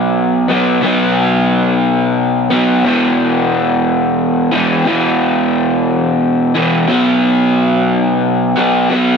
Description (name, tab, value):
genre	rock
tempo	59 BPM (dotted quarters)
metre	6/8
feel	straight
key	unclear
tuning	A4 = 441 Hz
part	crunchy overdriven guitar	solo	0.0-9.2 s	E2 to B3	-11 LUFS	equal	none
room	moderate huge ambient reverb, RT60 7.6 s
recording	none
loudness	-11 LUFS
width	side -6 dB against mid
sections	0.0-9.2 A section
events	none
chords	0.0 B5; 2.9 E5; 6.9 B5